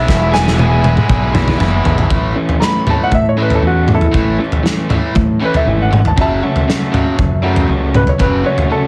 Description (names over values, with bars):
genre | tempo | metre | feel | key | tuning
indie rock | 118 BPM | 4/4 | straight | A major | A4 = 438 Hz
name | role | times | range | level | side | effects
warm upright piano | melody | 0.0-8.9 s | E4 to B5 | -20 LUFS | equal | analog delay
percussive tonewheel organ | sustained chords | 0.0-2.1 s | B4 to D6 | -33 LUFS | equal | none
overdriven electric guitar | riff | 0.0-8.9 s | E2 to E4 | -22 LUFS | equal | none
growling fingered electric bass | bass | 0.0-8.4 s | E1 to A2 | -18 LUFS | equal | overdrive
loose indie drum kit | drums | 0.1-8.7 s | kick drum, snare drum, toms | -18 LUFS | equal | none
crunchy overdriven guitar | riff | 0.3-8.9 s | E3 to G#4 | -23 LUFS | equal | subtle chorus
room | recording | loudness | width
light reverb, studio ambience | heavily compressed radio sound | -14 LUFS | mono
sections
0.0-2.1 A section; 2.1-8.9 B section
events
drum fill 0.1-2.1; upright piano solo 2.1-8.9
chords
0.0 E; 2.1 A; 6.2 F#m